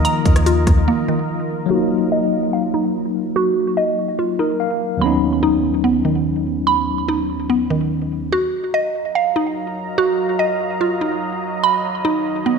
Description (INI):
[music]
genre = hip hop, trap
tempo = 145 BPM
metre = 4/4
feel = half-time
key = Eb minor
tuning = A4 = 440 Hz
[part]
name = tine electric piano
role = accompaniment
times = 0.0-8.3 s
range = D#2 to F5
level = -20 LUFS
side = left 2 dB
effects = medium stereo tremolo, low-pass filter
[part]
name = deep dark ambient pad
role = sustained chords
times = 0.0-1.7, 9.0-12.6 s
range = D#3 to B5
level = -26 LUFS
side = right 1 dB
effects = chorus, built-in reverb
[part]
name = mallet-like synth pluck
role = arpeggios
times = 0.0-12.6 s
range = Eb3 to B5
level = -19 LUFS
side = right 2 dB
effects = chorus, phaser, low-pass filter, tape echo
[part]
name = clean 808-style bass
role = bass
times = 0.0-0.9 s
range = Eb2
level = -17 LUFS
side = equal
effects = none
[part]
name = trap drum kit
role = drums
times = 0.0-0.8 s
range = hi-hat, kick drum, rim click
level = -16 LUFS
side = equal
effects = none
[sound]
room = moderate scoring stage reverb, RT60 2.1 s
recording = dark, warm production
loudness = -16 LUFS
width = side -5 dB against mid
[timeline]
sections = 0.0-1.7 A section; 1.7-8.3 B section; 8.3-12.6 A section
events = break 0.9-1.7; filter sweep 1.7-8.3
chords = 0.0 Bbsus4/Eb; 1.7 Ebmadd9; 5.0 Badd9/D#; 8.3 Ebmadd9; 11.6 Badd9/D#